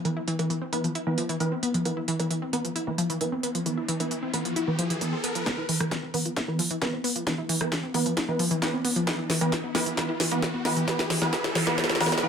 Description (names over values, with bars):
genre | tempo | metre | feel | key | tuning
driving peak-time techno | 133 BPM | 4/4 | straight | unclear | A4 = 437 Hz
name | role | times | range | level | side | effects
wide unison pluck | riff | 0.1-12.2 s | E3 to E4 | -28 LUFS | left 1 dB | sidechain pumping, dub echo
rave stab | stabs | 0.1-12.3 s | E3 to B4 | -30 LUFS | right 2 dB | chorus, built-in reverb, sidechain pumping, digital delay
techno drum kit | drums | 0.1-12.3 s | hi-hat, rim click, snare drum | -29 LUFS | equal | sidechain pumping on hats, low-pass filter on hats, low-pass filter on snare, low-pass filter on room
riser and noise sweep | sound effects | 3.4-12.3 s | none | -35 LUFS | equal | none
electronic kick drum | drums | 5.5-11.9 s | none | -34 LUFS | left 1 dB | high-pass filter on kick, high-pass filter on room
room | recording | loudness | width
moderate stone room reverb, RT60 1.1 s | none | -24 LUFS | side -7 dB against mid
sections
0.0-5.5 A section; 5.5-12.3 B section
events
riser 3.4-5.5, 5.5-12.2; build-up 5.5-12.3; drum fill 5.5-12.2; filter sweep on synth arpeggio sound 5.5-12.3; filter sweep on synth stab 5.5-12.3; noise sweep 10.9-12.3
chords
0.0 E5